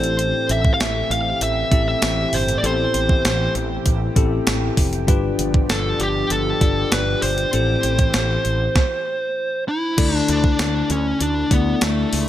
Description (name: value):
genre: 1980s-style pop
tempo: 98 BPM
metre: 4/4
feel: straight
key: A minor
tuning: A4 = 440 Hz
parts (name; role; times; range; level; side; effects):
- fuzz lead guitar; melody; 0.0-12.3 s; A3 to F5; -21 LUFS; equal; distortion
- bell-like tine electric piano; accompaniment; 0.0-12.3 s; G2 to D5; -25 LUFS; left 5 dB; none
- lush unison pad; sustained chords; 0.0-8.7 s; B2 to G4; -29 LUFS; right 1 dB; chorus
- fretless electric bass; bass; 0.0-12.3 s; F1 to D2; -24 LUFS; right 1 dB; none
- clean 12-bit digital drum machine; drums; 0.0-12.3 s; crash cymbal, hi-hat, kick drum, snare drum, tambourine; -20 LUFS; right 1 dB; gated reverb
room: light reverb, digital ambience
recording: none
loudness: -17 LUFS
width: side -12 dB against mid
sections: 0.0-10.0 A section; 10.0-12.3 A section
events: stop 8.8-10.0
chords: 0.0 Am7; 5.1 G7; 7.5 Am7; 10.0 Dsus2